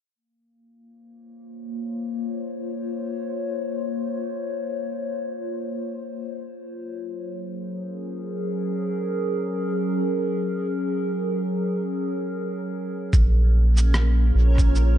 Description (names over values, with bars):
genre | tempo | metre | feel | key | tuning
ambient dub | free time | none | none | Bb minor | A4 = 440 Hz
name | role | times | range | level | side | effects
warbly tape-like pad | sustained chords | 1.3-15.0 s | Gb3 to Db5 | -27 LUFS | left 1 dB | chorus, built-in reverb, phaser
soft dub sub bass | bass | 13.1-15.0 s | Bb1 | -17 LUFS | equal | none
electronic kick drum | drums | 13.1-14.7 s | none | -19 LUFS | equal | studio reverb
electronic shaker and rim click | drums | 13.1-14.9 s | none | -31 LUFS | right 1 dB | studio reverb, dub echo
backwards swelling texture | texture | 13.8-15.0 s | Db4 to Bb4 | -32 LUFS | right 3 dB | built-in reverb
room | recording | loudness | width
moderate concert hall reverb, RT60 1.8 s, digital ambience | dark, warm production | -23 LUFS | side -11 dB against mid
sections
0.2-13.1 A section; 13.1-15.0 B section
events
filter sweep on ambient pad 0.2-13.1; break 11.5-13.1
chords
0.2 Bbm; 6.6 Gbmaj9#11; 13.1 Bbm7